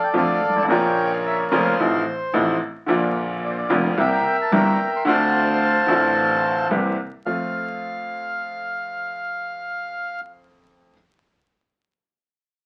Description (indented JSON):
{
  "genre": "tango",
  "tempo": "110 BPM",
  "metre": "4/4",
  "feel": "rubato",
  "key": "F major",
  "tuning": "A4 = 441 Hz",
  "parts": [
    { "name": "bandoneon", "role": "melody", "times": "0.0-10.2 s", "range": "A4 to C6", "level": "-24 LUFS", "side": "equal", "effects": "none" },
    { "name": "bright upright piano", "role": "accompaniment", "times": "0.1-10.9 s", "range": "F1 to G4", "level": "-24 LUFS", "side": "equal", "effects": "none" },
    { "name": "dark double bass", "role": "bass", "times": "0.1-7.5 s", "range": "F1 to F2", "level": "-32 LUFS", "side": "equal", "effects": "none" }
  ],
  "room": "moderate studio reverb, RT60 0.6 s",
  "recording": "very old 78 rpm record, vinyl crackle",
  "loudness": "-21 LUFS",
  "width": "mono",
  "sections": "0.0-7.3 A section; 7.3-9.4 B section",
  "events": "none",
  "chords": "0.0 Dm/F; 0.7 Bbm; 1.8 F7/A; 2.9 Bb; 4.0 C7; 5.1 Dm7; 6.7 C7; 7.3 F",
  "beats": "0.14 | 0.69 1.24 1.79 2.33 | 2.88 3.42 3.97 4.52 | 5.06 5.61 6.16 6.71 | 7.26 7.81 8.35 8.90"
}